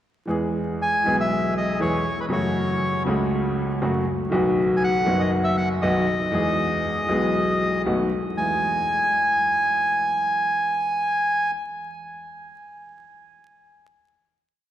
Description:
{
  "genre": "tango",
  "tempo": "119 BPM",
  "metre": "4/4",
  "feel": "rubato",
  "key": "E major",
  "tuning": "A4 = 440 Hz",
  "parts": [
    { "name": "warm grand piano", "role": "accompaniment", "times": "0.3-11.5 s", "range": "F#1 to G#4", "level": "-23 LUFS", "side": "equal", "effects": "none" },
    { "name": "bandoneon", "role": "melody", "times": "0.8-11.5 s", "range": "B4 to G#5", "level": "-23 LUFS", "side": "equal", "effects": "none" }
  ],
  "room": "wet cathedral reverb, RT60 5.3 s",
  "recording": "recorded in a church or concert hall, vinyl crackle",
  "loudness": "-20 LUFS",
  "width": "side -11 dB against mid",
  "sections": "0.3-8.4 A section; 8.4-12.4 final chord",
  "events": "none",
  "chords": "0.3 E; 2.3 F#m; 4.3 B; 6.3 E; 7.9 B7; 8.4 E"
}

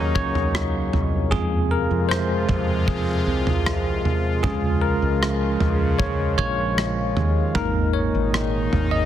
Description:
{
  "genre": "pop ballad",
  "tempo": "77 BPM",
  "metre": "4/4",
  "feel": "straight",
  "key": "Db major",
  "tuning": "A4 = 440 Hz",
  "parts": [
    { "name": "bell-like tine electric piano", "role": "accompaniment", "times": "0.0-9.1 s", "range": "Gb3 to Eb5", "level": "-24 LUFS", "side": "left 1 dB", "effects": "medium stereo tremolo" },
    { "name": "sweeping resonant pad", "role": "sustained chords", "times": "0.0-9.1 s", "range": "Bb2 to F4", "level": "-27 LUFS", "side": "right 1 dB", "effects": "chorus" },
    { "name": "woody fretless electric bass", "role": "bass", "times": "0.0-9.1 s", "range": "Ab1 to F2", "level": "-26 LUFS", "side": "equal", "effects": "wide subtle chorus" },
    { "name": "modern studio drum kit", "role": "drums", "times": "0.2-8.9 s", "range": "kick drum, rim click, toms", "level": "-24 LUFS", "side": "equal", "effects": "soft clipping on snare" }
  ],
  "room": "light reverb, small room ambience",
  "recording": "dense, heavily limited modern master",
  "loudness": "-19 LUFS",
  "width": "side -11 dB against mid",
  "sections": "0.0-9.1 A section",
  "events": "tine electric piano solo 0.0-9.1",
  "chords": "0.0 Ebm7; 1.3 Fm; 4.4 Db; 7.6 Absus2"
}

